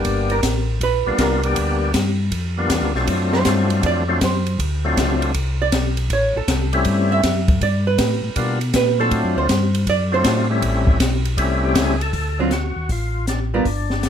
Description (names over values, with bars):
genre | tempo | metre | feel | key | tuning
soul jazz organ trio | 159 BPM | 4/4 | swing 66% on 8ths | unclear | A4 = 441 Hz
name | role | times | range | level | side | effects
percussive tonewheel organ | melody | 0.0-14.1 s | F#3 to A4 | -22 LUFS | left 3 dB | slow rotary speaker, overdrive
mellow tonewheel organ | bass | 0.0-14.1 s | G1 to B2 | -21 LUFS | equal | chorus vibrato, slow rotary speaker
open jazz drum kit | drums | 0.0-14.1 s | hi-hat, kick drum, ride cymbal, snare drum | -22 LUFS | left 1 dB | none
archtop guitar, miked and amplified | accompaniment | 0.3-13.7 s | D3 to E5 | -22 LUFS | right 6 dB | none
room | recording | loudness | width
light reverb | none | -17 LUFS | side -8 dB against mid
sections
0.0-12.1 A section; 12.1-14.1 B section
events
hollow-body jazz guitar solo 0.0-12.1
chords
0.1 G7#9; 3.1 D7#9; 6.1 A7#9; 7.6 G7#9; 9.1 D7#9; 10.6 A7#9; 12.1 D(#9)